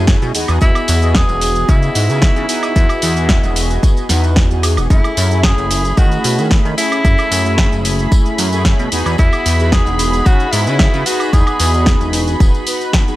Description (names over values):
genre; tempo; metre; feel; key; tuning
nu-disco, nu disco; 112 BPM; 4/4; straight; unclear; A4 = 440 Hz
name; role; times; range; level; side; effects
mellow synth brass; accompaniment; 0.0-13.2 s; A3 to D#5; -20 LUFS; equal; chorus, sidechain pumping, slapback echo
chorused synth bass; bass; 0.0-12.5 s; E1 to D#3; -16 LUFS; equal; tube saturation, sidechain pumping
electronic kick drum; drums; 0.1-13.0 s; none; -12 LUFS; equal; studio reverb
house drum kit; drums; 0.1-13.2 s; hi-hat, shaker, snare drum, woodblock; -19 LUFS; equal; studio reverb
tambourine; percussion; 0.1-13.2 s; none; -30 LUFS; left 3 dB; none
clear tenor saxophone; melody; 0.6-12.1 s; E4 to G#4; -20 LUFS; equal; tape echo
lush unison pad; sustained chords; 4.9-13.2 s; B5; -26 LUFS; right 2 dB; chorus, sidechain pumping
room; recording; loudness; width
digital ambience; none; -11 LUFS; side -16 dB against mid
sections
0.0-13.2 A section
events
none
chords
0.3 Emaj7; 4.9 F#m7; 8.9 Emaj7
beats
0.08 | 0.62 1.15 1.69 2.22 | 2.76 3.30 3.83 4.37 | 4.90 5.44 5.97 6.51 | 7.05 7.58 8.12 8.65 | 9.19 9.72 10.26 10.80 | 11.33 11.87 12.40 12.94